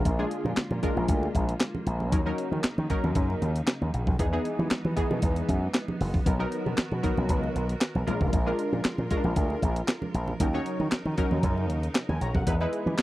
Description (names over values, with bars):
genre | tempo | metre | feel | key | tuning
early-eighties boogie funk | 116 BPM | 4/4 | straight | unclear | A4 = 440 Hz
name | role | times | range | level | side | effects
funky polysynth comp | accompaniment | 0.0-13.0 s | E3 to A#5 | -30 LUFS | left 1 dB | chorus
bright studio string section | sustained chords | 0.0-13.0 s | C#3 to A#4 | -38 LUFS | equal | none
slap bass with an envelope filter | bass | 0.1-13.0 s | E#1 to E3 | -28 LUFS | equal | none
crisp 8-bit digital drum machine | drums | 0.1-13.0 s | handclaps, hi-hat, kick drum, snare drum | -26 LUFS | equal | none
congas | percussion | 0.1-13.0 s | none | -35 LUFS | right 3 dB | none
room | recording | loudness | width
little or no reverb | dry, close 1970s-style studio recording | -25 LUFS | side -16 dB against mid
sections
0.0-13.0 A section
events
none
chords
0.0 A#7; 2.1 D#m7; 4.2 Emaj7; 6.3 Bmaj7; 8.1 A#7; 10.4 D#m7; 12.5 Emaj7